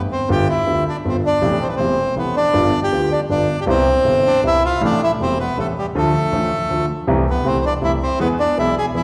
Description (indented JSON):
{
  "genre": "tango",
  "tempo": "160 BPM",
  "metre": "3/4",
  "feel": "rubato",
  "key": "C major, A minor from 4.8 s",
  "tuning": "A4 = 444 Hz",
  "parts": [
    { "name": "dark concert grand piano", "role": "accompaniment", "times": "0.0-9.0 s", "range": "E1 to G#4", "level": "-22 LUFS", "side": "equal", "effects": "none" },
    { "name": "bandoneon", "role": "melody", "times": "0.1-9.0 s", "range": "G3 to G#5", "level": "-20 LUFS", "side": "equal", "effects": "none" }
  ],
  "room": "wet recital hall reverb, RT60 1.8 s",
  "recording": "recorded in a church or concert hall",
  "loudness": "-18 LUFS",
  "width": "mono",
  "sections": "0.0-4.8 A section; 4.8-9.0 B section",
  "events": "none",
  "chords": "0.3 G7; 1.4 Am7; 2.5 G7; 3.7 Cmaj7; 4.8 Am7; 5.9 Dm; 7.1 Am/C; 8.2 E"
}